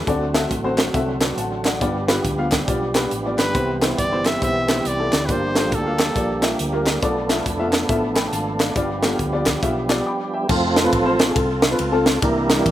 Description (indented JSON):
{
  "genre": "uptempo gospel",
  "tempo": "138 BPM",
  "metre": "4/4",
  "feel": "swing 63% on 8ths",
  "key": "unclear",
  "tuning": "A4 = 441 Hz",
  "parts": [
    { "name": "dark French horn section", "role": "sustained chords", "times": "0.0-10.5 s", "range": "E3 to B4", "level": "-33 LUFS", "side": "right 1 dB", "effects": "none" },
    { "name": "tonewheel organ", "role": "sustained chords", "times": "0.0-12.7 s", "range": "D3 to C5", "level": "-25 LUFS", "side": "right 2 dB", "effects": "chorus vibrato, stopped rotary speaker" },
    { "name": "warm upright piano", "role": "accompaniment", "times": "0.1-12.7 s", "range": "G2 to D6", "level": "-23 LUFS", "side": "left 2 dB", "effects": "slapback echo" },
    { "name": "fingered electric bass", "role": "bass", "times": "0.1-12.7 s", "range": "F1 to E2", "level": "-28 LUFS", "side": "equal", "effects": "none" },
    { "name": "crisp fusion drum kit", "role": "drums", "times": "0.1-12.7 s", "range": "crash cymbal, hi-hat, kick drum, ride cymbal, snare drum", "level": "-21 LUFS", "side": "equal", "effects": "none" },
    { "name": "group handclap", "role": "percussion", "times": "0.4-10.0 s", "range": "none", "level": "-33 LUFS", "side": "left 3 dB", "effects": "none" },
    { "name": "warm trumpet", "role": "melody", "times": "3.4-6.6 s", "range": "A4 to E5", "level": "-24 LUFS", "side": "equal", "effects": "none" }
  ],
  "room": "little or no reverb",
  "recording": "none",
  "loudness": "-18 LUFS",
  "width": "side -13 dB against mid",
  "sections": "0.0-10.5 A section; 10.5-12.7 B section",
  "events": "upright piano fill 9.8-10.5; break 10.1-10.5; tonewheel organ solo 10.5-12.7",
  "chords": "0.1 D7; 1.8 G7; 3.6 Cmaj7; 5.3 Gm7; 7.0 Bm7b5; 8.8 G7; 10.5 F",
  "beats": "| 0.07 0.51 0.94 1.38 | 1.81 2.25 2.68 3.12 | 3.55 3.98 4.42 4.85 | 5.29 5.72 6.16 6.59 | 7.03 7.46 7.89 8.33 | 8.76 9.19 9.63 10.06 | 10.49 10.93 11.36 11.79 | 12.22 12.65"
}